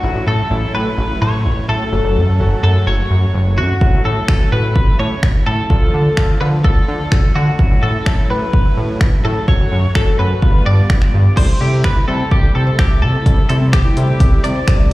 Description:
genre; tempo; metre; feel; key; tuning
dance-pop; 127 BPM; 4/4; straight; unclear; A4 = 440 Hz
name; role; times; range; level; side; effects
twelve-string electric guitar; melody; 0.0-14.9 s; F#4 to D5; -21 LUFS; left 1 dB; wide subtle chorus, digital delay, slapback echo
clear concert grand piano; accompaniment; 0.0-14.5 s; F3 to F#4; -26 LUFS; left 1 dB; slapback echo
supersaw chords; sustained chords; 0.0-14.9 s; C#3 to F#4; -26 LUFS; right 1 dB; sidechain pumping
chorused synth bass; bass; 0.0-14.9 s; F#1 to D3; -16 LUFS; equal; sidechain pumping
punchy analog drum machine; drums; 3.8-14.8 s; crash cymbal, finger snaps, hi-hat, kick drum; -14 LUFS; equal; none
wide unison pluck; arpeggios; 11.4-14.9 s; G3 to E5; -28 LUFS; equal; sidechain pumping, digital delay
room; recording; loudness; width
little or no reverb; live gig heard through the venue's PA, recital hall reverb; -12 LUFS; side -18 dB against mid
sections
0.0-11.4 A section; 11.4-14.9 B section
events
none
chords
0.0 A6; 1.9 F#m; 3.8 A6; 5.7 Dm; 7.6 A6; 9.5 F#m; 10.4 G7; 11.4 C6

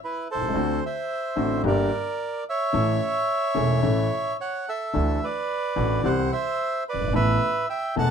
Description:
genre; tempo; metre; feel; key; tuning
tango; 109 BPM; 4/4; rubato; unclear; A4 = 440 Hz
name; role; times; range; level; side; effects
bandoneon; melody; 0.0-8.1 s; E4 to A5; -25 LUFS; right 2 dB; none
warm upright piano; accompaniment; 0.3-8.1 s; E1 to A4; -25 LUFS; left 3 dB; none
upright bass; bass; 0.3-8.1 s; E1 to D2; -27 LUFS; right 2 dB; none
room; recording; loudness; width
light reverb; minimal, uncompressed stereo recording; -22 LUFS; side -7 dB against mid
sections
0.0-8.1 A section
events
none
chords
0.0 A; 0.6 D7; 1.6 Gm; 2.7 A; 4.9 Dadd9; 6.0 C; 7.1 Asus2

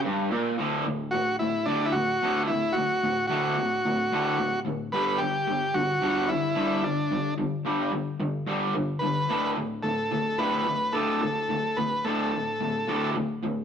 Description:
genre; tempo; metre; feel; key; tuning
rock; 110 BPM; 4/4; straight; D major; A4 = 441 Hz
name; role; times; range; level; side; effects
raw garage guitar; riff; 0.0-13.6 s; D2 to G3; -27 LUFS; equal; overdrive
overdriven combo organ; melody; 1.1-13.1 s; D4 to B4; -26 LUFS; equal; none
room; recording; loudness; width
moderate stone room reverb, RT60 1.2 s; rough rehearsal-room recording; -24 LUFS; side -8 dB against mid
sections
0.6-13.6 A section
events
none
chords
0.0 G5; 0.6 D; 4.9 G5; 9.3 D5

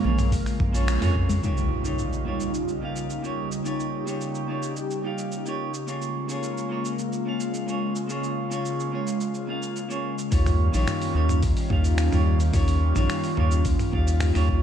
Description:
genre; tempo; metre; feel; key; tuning
sunset chillout; 108 BPM; 4/4; straight; unclear; A4 = 441 Hz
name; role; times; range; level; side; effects
clean electric guitar; accompaniment; 0.0-14.6 s; Bb3 to F5; -31 LUFS; right 2 dB; auto-pan, ping-pong delay
airy breathy pad; sustained chords; 0.0-14.6 s; Db3 to G4; -28 LUFS; equal; chorus, phaser
round analog bass; bass; 0.0-1.4, 10.3-14.6 s; Bb1 to F2; -22 LUFS; equal; tube saturation
congas; percussion; 0.0-1.4 s; none; -34 LUFS; left 5 dB; none
dusty soul sampler-style drum kit; drums; 0.2-14.5 s; cabasa, finger snaps, hi-hat, toms; -32 LUFS; right 1 dB; studio reverb
electronic kick drum; drums; 0.3-1.3, 10.3-14.6 s; none; -26 LUFS; equal; studio reverb
impact; sound effects; 1.4-3.7 s; none; -30 LUFS; equal; none
room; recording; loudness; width
light reverb; dark, warm production; -23 LUFS; side -9 dB against mid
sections
0.0-1.4 A section; 1.4-10.3 B section; 10.3-14.6 A section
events
band accent 0.9; impact 1.4-3.7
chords
0.0 Bbm7; 1.4 Eb9; 5.9 Bbm7; 10.3 Eb9

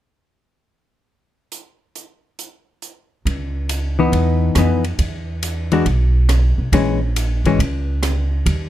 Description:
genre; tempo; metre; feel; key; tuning
jazz, small-group swing and bop; 138 BPM; 4/4; swing 67% on 8ths; unclear; A4 = 440 Hz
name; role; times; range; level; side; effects
open jazz drum kit; drums; 1.5-8.6 s; hi-hat, kick drum, ride cymbal, rim click; -25 LUFS; right 2 dB; none
upright bass; bass; 3.3-8.7 s; G#1 to E#2; -18 LUFS; right 1 dB; none
hollow-body jazz guitar; accompaniment; 4.0-7.6 s; E3 to F#4; -16 LUFS; left 4 dB; none
room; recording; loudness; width
light reverb; minimal, uncompressed stereo recording; -16 LUFS; side -13 dB against mid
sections
1.5-3.2 A section; 3.2-8.7 B section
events
none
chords
1.5 N.C.; 3.2 C#m9; 5.0 E5; 6.7 A#m7b5

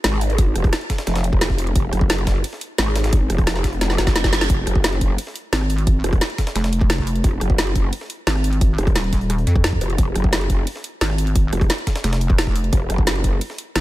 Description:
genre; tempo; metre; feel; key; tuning
dark technical drum and bass; 175 BPM; 4/4; straight; unclear; A4 = 440 Hz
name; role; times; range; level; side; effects
growl bass; bass; 0.0-13.4 s; F1 to Ab1; -20 LUFS; equal; chorus, overdrive, sidechain pumping
breakbeat sampler-style drum kit; drums; 0.0-13.8 s; hi-hat, snare drum; -33 LUFS; equal; none
drum and bass drum kit; drums; 0.0-13.8 s; hi-hat, rim click, snare drum; -24 LUFS; equal; none
electronic kick drum; drums; 0.4-13.3 s; none; -18 LUFS; equal; none
reverse cymbal; sound effects; 4.1-4.5 s; none; -31 LUFS; right 6 dB; none
pulsing pluck wobble bass; bass; 5.5-13.8 s; Eb1 to F2; -19 LUFS; equal; chorus
room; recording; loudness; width
little or no reverb; none; -17 LUFS; side -16 dB against mid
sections
0.0-13.8 A section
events
drum fill 3.8-4.5; reverse cymbal 4.1-4.5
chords
0.0 Ebmadd9 (rootless)

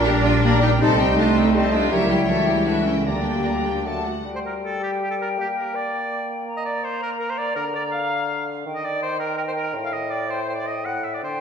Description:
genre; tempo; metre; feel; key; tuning
quick classical-period movement for symphony orchestra; 162 BPM; 3/4; rubato; G minor; A4 = 440 Hz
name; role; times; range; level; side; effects
rich studio violin section; melody; 0.0-4.2 s; E5 to Bb5; -31 LUFS; left 2 dB; none
bright oboe; second line; 0.0-11.4 s; G4 to F#5; -29 LUFS; equal; none
clear clarinet; second line; 0.0-11.4 s; A3 to F#5; -29 LUFS; left 2 dB; none
hollow concert flute; second line; 0.0-11.4 s; D5 to Bb5; -29 LUFS; left 2 dB; none
rich studio violin section; second line; 0.0-3.8 s; C4 to A#4; -26 LUFS; left 3 dB; none
mellow bassoon; accompaniment; 0.0-11.4 s; A2 to Bb3; -29 LUFS; left 1 dB; none
rich studio viola section; accompaniment; 0.0-4.2 s; F#3 to Bb4; -29 LUFS; equal; none
mellow French horn section; sustained chords; 0.0-4.0 s; G3 to G4; -27 LUFS; left 4 dB; none
clear studio cello section; bass; 0.0-4.0 s; D3 to D4; -23 LUFS; right 3 dB; none
clear studio double bass section; bass; 0.0-4.1 s; Bb1 to D2; -24 LUFS; right 2 dB; none
room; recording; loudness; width
wet recital hall reverb, RT60 1.4 s; recorded in a church or concert hall; -20 LUFS; side -7 dB against mid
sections
0.0-4.2 A section; 4.2-11.4 B section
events
none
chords
0.0 Gm/Bb; 0.8 Am7b5/C; 1.9 C#dim7; 3.1 Gm/D; 3.8 D; 4.2 N.C.; 5.4 Gm/Bb; 6.5 N.C.; 7.6 Bb/D; 8.7 Eb; 9.7 F13/A (rootless)

